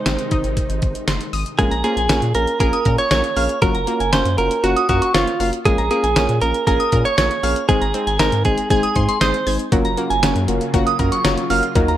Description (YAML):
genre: synth-pop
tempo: 118 BPM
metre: 4/4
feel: straight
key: Bb minor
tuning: A4 = 440 Hz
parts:
  - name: direct-recorded clean electric guitar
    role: melody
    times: 0.0-9.6 s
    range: F4 to Db5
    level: -20 LUFS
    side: right 2 dB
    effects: vibrato effect
  - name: string machine, violas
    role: sustained chords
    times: 0.0-1.6, 9.7-12.0 s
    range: C3 to F4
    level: -28 LUFS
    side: left 1 dB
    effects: ensemble chorus
  - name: analog pluck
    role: arpeggios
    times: 0.1-11.9 s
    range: Gb3 to Ab6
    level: -27 LUFS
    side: left 2 dB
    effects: chorus, tape echo
  - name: round analog bass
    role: bass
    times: 0.1-12.0 s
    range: Gb1 to Bb2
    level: -22 LUFS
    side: equal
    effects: none
  - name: detuned 8-bit digital drum machine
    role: drums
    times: 0.1-12.0 s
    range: hi-hat, kick drum, snare drum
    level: -21 LUFS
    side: equal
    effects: none
  - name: soft electric-piano-like synth keys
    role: accompaniment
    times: 1.6-11.9 s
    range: Ab3 to C5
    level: -22 LUFS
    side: left 1 dB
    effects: chorus
  - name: soft synth bell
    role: second line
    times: 1.7-12.0 s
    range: Ab5 to F6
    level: -24 LUFS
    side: right 2 dB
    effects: chorus, phaser, tape echo
room: light reverb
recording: none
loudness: -15 LUFS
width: side -12 dB against mid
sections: 0.0-1.6 A section; 1.6-12.0 B section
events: none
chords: 0.0 Ab; 1.6 Bbm7; 3.6 Gbmaj7; 5.7 Bbm7; 7.7 Ab; 9.7 Gbmaj7